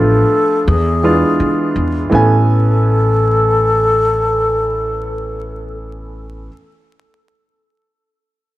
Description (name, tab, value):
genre	hip hop, jazz-hop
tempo	83 BPM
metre	4/4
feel	swing 58% on 16ths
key	unclear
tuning	A4 = 440 Hz
part	wooden-headed alto flute	melody	0.0-5.8 s	G#4 to A4	-16 LUFS	left 1 dB	plate reverb, tape echo
part	warm grand piano	accompaniment	0.0-6.5 s	E3 to G#5	-18 LUFS	right 2 dB	plate reverb
part	upright bass	bass	0.0-6.5 s	A1 to E3	-17 LUFS	equal	none
room	moderate studio reverb, RT60 0.6 s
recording	dark, warm production, vinyl crackle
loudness	-12 LUFS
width	side -16 dB against mid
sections	0.0-2.1 A section; 2.1-5.0 B section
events	none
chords	0.0 Bm7b5; 0.7 E7b9; 2.1 Amaj7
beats	0.67 1.40 | 2.12 2.84 3.56 4.29